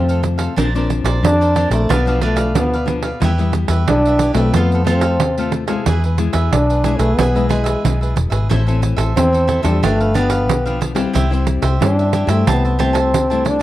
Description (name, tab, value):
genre	samba and choro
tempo	91 BPM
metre	4/4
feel	straight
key	A minor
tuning	A4 = 440 Hz
part	breathy trombone	melody	0.0-13.6 s	G3 to D4	-18 LUFS	equal	slapback echo
part	cavaquinho	accompaniment	0.0-13.6 s	D4 to A5	-25 LUFS	right 3 dB	none
part	nylon-string guitar	accompaniment	0.0-13.6 s	G2 to F4	-23 LUFS	left 6 dB	none
part	vintage muted fingered electric bass	bass	0.0-13.6 s	E1 to G2	-18 LUFS	equal	none
part	pandeiro	percussion	0.1-13.6 s	none	-21 LUFS	right 6 dB	none
room	small room reverb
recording	dry, close 1970s-style studio recording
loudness	-14 LUFS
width	side -14 dB against mid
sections	0.0-13.6 A section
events	none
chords	0.0 F; 0.6 Bbadd9; 1.9 Bdim; 3.2 Em; 4.5 F; 5.9 E; 8.5 Am; 9.8 G7; 11.2 C; 12.5 Am7/C